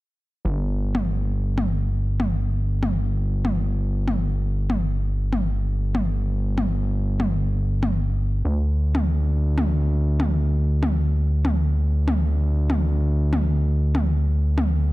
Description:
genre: melodic techno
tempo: 120 BPM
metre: 4/4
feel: straight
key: unclear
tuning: A4 = 440 Hz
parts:
  - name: gritty driven synth bass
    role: bass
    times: 0.4-14.9 s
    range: G1 to D2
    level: -21 LUFS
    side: equal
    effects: none
  - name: electronic toms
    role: drums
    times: 0.9-14.7 s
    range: none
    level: -27 LUFS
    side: left 1 dB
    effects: overdrive, studio reverb
room: digital ambience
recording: dense, heavily limited modern master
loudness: -20 LUFS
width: side -18 dB against mid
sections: 0.4-14.9 A section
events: none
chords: none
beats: | 0.45 0.95 1.45 1.95 | 2.45 2.95 3.45 3.95 | 4.45 4.95 5.45 5.95 | 6.45 6.95 7.45 7.95 | 8.45 8.95 9.45 9.95 | 10.45 10.95 11.45 11.95 | 12.45 12.95 13.45 13.95 | 14.45

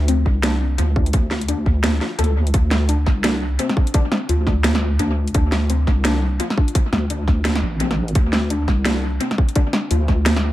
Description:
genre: half-time drum and bass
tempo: 171 BPM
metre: 4/4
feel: swing 60% on 16ths, half-time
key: D minor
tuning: A4 = 440 Hz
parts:
  - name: warbly dusty pluck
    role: arpeggios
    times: 0.0-10.5 s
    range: C4 to A4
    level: -26 LUFS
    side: left 4 dB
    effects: chorus, tape echo
  - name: deep soft wobble bass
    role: bass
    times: 0.0-10.5 s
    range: A1 to D2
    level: -19 LUFS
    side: equal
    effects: chorus
  - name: drum and bass drum kit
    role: drums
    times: 0.1-10.4 s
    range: hi-hat, snare drum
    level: -22 LUFS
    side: right 1 dB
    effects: overdrive, dub echo
  - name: electronic kick drum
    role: drums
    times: 0.3-10.2 s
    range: none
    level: -17 LUFS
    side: equal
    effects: overdrive
room: light reverb, digital ambience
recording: echo-heavy mix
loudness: -16 LUFS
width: side -15 dB against mid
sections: 0.0-10.5 A section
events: none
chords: 0.0 Dm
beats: 0.08 0.43 0.79 | 1.14 1.49 1.84 2.19 | 2.54 2.89 3.24 3.59 | 3.94 4.29 4.65 5.00 | 5.35 5.70 6.05 6.40 | 6.75 7.10 7.45 7.80 | 8.15 8.51 8.86 9.21 | 9.56 9.91 10.26

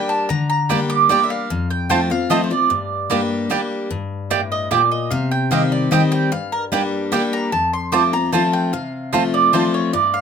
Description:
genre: bluegrass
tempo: 149 BPM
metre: 3/4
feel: straight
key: G minor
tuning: A4 = 441 Hz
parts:
  - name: mandolin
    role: melody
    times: 0.0-10.2 s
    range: Bb4 to D6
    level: -19 LUFS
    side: right 4 dB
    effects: none
  - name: picked steel-string acoustic guitar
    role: accompaniment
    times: 0.0-10.2 s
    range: F2 to G4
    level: -20 LUFS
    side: left 3 dB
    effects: none
  - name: mandolin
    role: stabs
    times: 0.7-9.6 s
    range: Bb3 to A5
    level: -20 LUFS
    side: right 8 dB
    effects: none
room: moderate small room ambience, RT60 0.5 s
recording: close, detailed microphones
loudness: -16 LUFS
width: side -7 dB against mid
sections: 0.0-3.9 A section; 3.9-10.2 B section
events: mandolin solo 3.9-10.2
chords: 0.0 Gm; 1.5 F; 2.7 Gm; 5.1 Cm; 6.3 Gm; 7.5 F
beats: | 0.30 0.70 1.10 | 1.50 1.90 2.30 | 2.71 3.11 3.51 | 3.91 4.31 4.71 | 5.12 5.52 5.92 | 6.32 6.72 7.12 | 7.53 7.93 8.33 | 8.73 9.13 9.53 | 9.93

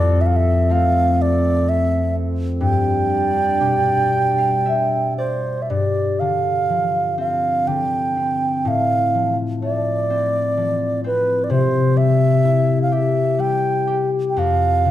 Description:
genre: celtic folk, Celtic slow air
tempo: 57-65 BPM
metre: 3/4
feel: rubato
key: G mixolydian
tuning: A4 = 440 Hz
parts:
  - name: mellow baroque flute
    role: melody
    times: 0.0-14.9 s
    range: B4 to G5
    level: -20 LUFS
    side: right 3 dB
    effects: none
  - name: concert harp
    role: accompaniment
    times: 0.0-14.9 s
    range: F2 to G5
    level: -19 LUFS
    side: left 2 dB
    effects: none
  - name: warbly tape-like pad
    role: sustained chords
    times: 0.0-5.7 s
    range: F3 to D5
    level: -28 LUFS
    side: right 2 dB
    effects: chorus, built-in reverb
room: wet recital hall reverb, RT60 1.4 s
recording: none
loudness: -16 LUFS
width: side -12 dB against mid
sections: 0.0-5.7 A section; 5.7-14.9 A section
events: harp fill 3.6-5.7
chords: 0.0 F; 2.6 G; 5.7 G7sus4; 8.7 F6/A; 11.5 C; 14.4 N.C.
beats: 0.71 1.66 | 2.62 3.62 4.66 | 5.69 6.69 7.67 | 8.65 9.62 10.57 | 11.51 12.44 13.39 | 14.36

